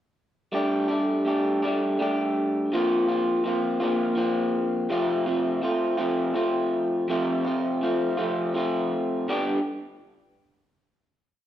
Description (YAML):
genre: rock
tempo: 55 BPM (dotted quarters)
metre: 6/8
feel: straight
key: unclear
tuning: A4 = 439 Hz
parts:
  - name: electric guitar through a small old amp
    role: solo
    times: 0.5-9.6 s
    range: F2 to G4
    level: -23 LUFS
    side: equal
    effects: none
room: wet recital hall reverb, RT60 1.4 s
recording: recorded in a church or concert hall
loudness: -23 LUFS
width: side -12 dB against mid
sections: 0.5-9.3 verse; 9.3-11.5 final chord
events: none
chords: 0.5 Gsus2; 2.7 Bbsus2; 4.9 F; 9.3 G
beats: | 0.52 1.62 | 2.72 3.82 | 4.92 6.01 | 7.11 8.20 | 9.29